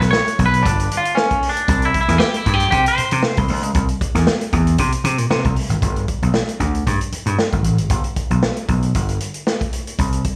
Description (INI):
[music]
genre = funk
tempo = 116 BPM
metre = 4/4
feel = straight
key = G mixolydian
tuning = A4 = 440 Hz
[part]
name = vintage slap bass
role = bass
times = 0.0-10.2 s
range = G1 to C3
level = -20 LUFS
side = equal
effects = none
[part]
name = vintage drum kit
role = drums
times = 0.0-10.4 s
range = hi-hat, kick drum, snare drum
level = -23 LUFS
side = equal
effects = none
[part]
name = twangy electric guitar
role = accompaniment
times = 0.1-3.4 s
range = C#4 to C#5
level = -20 LUFS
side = equal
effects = spring reverb
[sound]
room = light reverb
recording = studio reverb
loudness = -18 LUFS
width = mono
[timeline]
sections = 0.0-5.8 A section; 5.8-10.4 B section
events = clean electric guitar solo 0.0-5.8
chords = 0.0 G; 1.7 C; 5.8 G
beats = 0.13 0.65 1.17 | 1.68 2.20 2.72 3.23 | 3.75 4.27 4.79 5.31 | 5.83 6.34 6.86 7.38 | 7.90 8.42 8.95 9.47 | 9.99